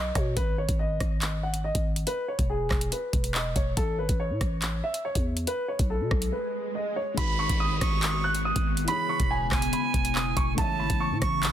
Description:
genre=hip hop, drill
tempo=141 BPM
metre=4/4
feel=half-time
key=G# phrygian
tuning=A4 = 440 Hz
part: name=dark grand piano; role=melody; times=0.0-11.5 s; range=G#4 to F#6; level=-31 LUFS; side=equal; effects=low-pass filter, ping-pong delay
part: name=growling 808-style bass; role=bass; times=0.0-11.5 s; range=E1 to B2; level=-30 LUFS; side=equal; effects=none
part: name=drill drum kit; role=drums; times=0.2-11.5 s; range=handclaps, hi-hat, kick drum, rim click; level=-28 LUFS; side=equal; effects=none
part: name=swell and downlifter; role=sound effects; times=5.9-10.6 s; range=none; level=-38 LUFS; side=right 2 dB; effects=none
part: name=felt-muted upright piano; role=accompaniment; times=7.1-11.5 s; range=E3 to E5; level=-38 LUFS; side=left 6 dB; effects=low-pass filter
part: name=breathy bright jazz flute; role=second line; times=7.2-11.5 s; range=G#5 to C#6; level=-31 LUFS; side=right 6 dB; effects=ping-pong delay
part: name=glassy FM pad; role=sustained chords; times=7.8-11.5 s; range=C#3 to F#4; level=-33 LUFS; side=left 2 dB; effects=ensemble chorus, built-in reverb
room=studio reverb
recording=dense, heavily limited modern master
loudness=-24 LUFS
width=side -10 dB against mid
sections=0.0-7.2 A section; 7.2-11.5 B section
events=swell 5.9-7.2; break 6.3-7.2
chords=0.4 G#5; 2.1 E; 3.8 A; 5.5 B7sus2; 7.2 G#m7; 8.9 E6; 10.6 A

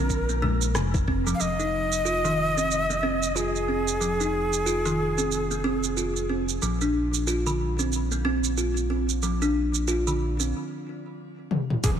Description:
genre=organic downtempo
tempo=92 BPM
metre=4/4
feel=swing 59% on 16ths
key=F dorian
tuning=A4 = 444 Hz
part: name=breathy Native American-style cedar flute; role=melody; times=0.0-6.3, 11.8-11.9 s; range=Ab4 to F5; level=-27 LUFS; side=equal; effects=digital delay, shimmer reverb
part: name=kalimba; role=arpeggios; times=0.0-12.0 s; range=C3 to F4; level=-27 LUFS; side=right 1 dB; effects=vintage 12-bit sampler grit, low-pass filter, ping-pong delay, shimmer reverb
part: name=round analog bass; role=bass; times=0.0-12.0 s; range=F1 to Bb1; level=-29 LUFS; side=equal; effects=none
part: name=deep house drum kit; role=drums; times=0.1-12.0 s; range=hi-hat, rim click, shaker, toms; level=-30 LUFS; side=right 3 dB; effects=none
part: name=electronic kick drum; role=drums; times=0.1-1.2, 11.8-12.0 s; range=none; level=-26 LUFS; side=equal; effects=none
part: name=congas and bongos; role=percussion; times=0.4-1.0 s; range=none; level=-33 LUFS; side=left 4 dB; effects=none
part: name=impact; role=sound effects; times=11.8-12.0 s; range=none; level=-26 LUFS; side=equal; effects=none
room=moderate lush hall reverb, RT60 1.9 s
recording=none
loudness=-23 LUFS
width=side -8 dB against mid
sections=0.0-1.4 A section; 1.4-11.8 B section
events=break 10.5-11.8; drum fill 11.5-11.8; impact 11.8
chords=0.0 Bb7(no3); 1.4 Fm7; 6.6 Bb

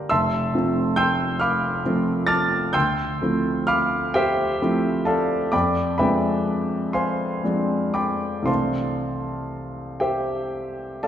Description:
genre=classical, impressionist solo piano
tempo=38-46 BPM (dotted quarters)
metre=6/8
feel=rubato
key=unclear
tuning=A4 = 440 Hz
part: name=clear grand piano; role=solo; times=0.0-11.1 s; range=F1 to A6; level=-20 LUFS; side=equal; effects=none
room=wet recital hall reverb, RT60 1.8 s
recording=heard from further back in the room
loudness=-20 LUFS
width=side -10 dB against mid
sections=0.0-11.1 A section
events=none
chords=0.1 Fmaj7; 2.7 Dm9; 5.5 Fm6; 8.5 C69

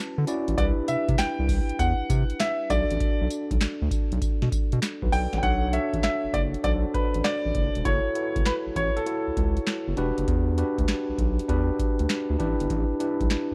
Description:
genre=R&B, new jack swing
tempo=99 BPM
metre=4/4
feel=swing 67% on 16ths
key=B minor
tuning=A4 = 441 Hz
part: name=clear grand piano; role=melody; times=0.0-9.9 s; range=A4 to A5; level=-31 LUFS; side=equal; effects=none
part: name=tine electric piano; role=accompaniment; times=0.0-13.5 s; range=C#4 to F#5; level=-31 LUFS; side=equal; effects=none
part: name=round analog bass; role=bass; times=0.2-13.5 s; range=E1 to D3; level=-29 LUFS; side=equal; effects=none
part: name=booming analog drum machine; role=drums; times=0.3-13.5 s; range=handclaps, hi-hat, kick drum, snare drum, tambourine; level=-29 LUFS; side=equal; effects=overdrive
room=little or no reverb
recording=dark, warm production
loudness=-25 LUFS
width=mono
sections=0.0-5.4 A section; 5.4-13.5 B section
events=none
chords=0.0 Dmaj13; 0.6 Cmaj9; 2.7 Bm7; 7.9 F#m7; 10.0 Em9; 12.4 A9sus4

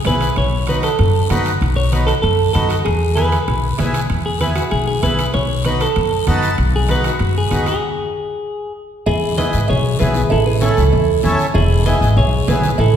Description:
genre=latin, cumbia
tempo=193 BPM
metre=4/4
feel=straight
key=E major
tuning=A4 = 441 Hz
part: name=timbales and cowbell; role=percussion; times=0.0-12.9 s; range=none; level=-29 LUFS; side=right 2 dB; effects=none
part: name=clean electric guitar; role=melody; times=0.1-13.0 s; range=E4 to D#5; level=-20 LUFS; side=right 2 dB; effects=spring reverb
part: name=accordion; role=accompaniment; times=0.1-12.7 s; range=B3 to A5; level=-22 LUFS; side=equal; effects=none
part: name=upright bass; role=bass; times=0.1-13.0 s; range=E1 to G#2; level=-17 LUFS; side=equal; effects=none
part: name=congas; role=percussion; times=0.1-13.0 s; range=none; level=-25 LUFS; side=right 1 dB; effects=none
part: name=guiro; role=percussion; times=0.1-13.0 s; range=none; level=-33 LUFS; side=left 6 dB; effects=none
room=wet recital hall reverb, RT60 1.6 s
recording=recorded in a church or concert hall, faint mains hum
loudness=-14 LUFS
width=side -9 dB against mid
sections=0.0-9.1 A section; 9.1-13.0 B section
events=accordion fill 6.1-6.6; stop 7.8-9.1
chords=0.4 B7; 2.9 E; 5.3 B7; 7.8 N.C.; 9.1 E; 10.3 A; 11.6 E

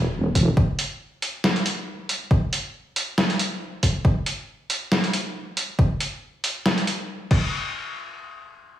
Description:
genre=deep dubstep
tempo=138 BPM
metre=4/4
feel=swing 55% on 16ths, half-time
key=unclear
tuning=A4 = 439 Hz
part: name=deep soft wobble bass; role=bass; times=0.0-0.6 s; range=E1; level=-21 LUFS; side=equal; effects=chorus, tube saturation
part: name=electronic kick drum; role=drums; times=0.4-7.4 s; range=none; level=-20 LUFS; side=equal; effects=none
part: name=trip hop sampler-style drum kit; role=drums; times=0.4-7.4 s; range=crash cymbal, hi-hat, snare drum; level=-24 LUFS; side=equal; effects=none
room=moderate lush hall reverb, RT60 1.7 s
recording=studio reverb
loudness=-22 LUFS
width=side -12 dB against mid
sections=0.0-7.5 A section; 7.5-8.8 B section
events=none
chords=none

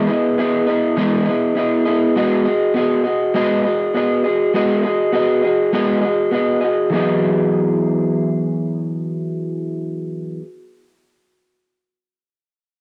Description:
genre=indie pop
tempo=101 BPM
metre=4/4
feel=swing 55% on 16ths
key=E major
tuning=A4 = 439 Hz
part: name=electric guitar through a small old amp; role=solo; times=0.0-10.5 s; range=E3 to D#5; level=-18 LUFS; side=equal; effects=subtle chorus, warbly pitch drift, cassette tape
room=moderate spring reverb, RT60 1.8 s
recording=home recording on cassette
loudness=-18 LUFS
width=mono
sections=0.0-2.2 A section; 2.2-6.9 B section; 6.9-9.3 C section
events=none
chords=0.0 Emaj7; 2.2 G#m7; 6.9 Emaj9

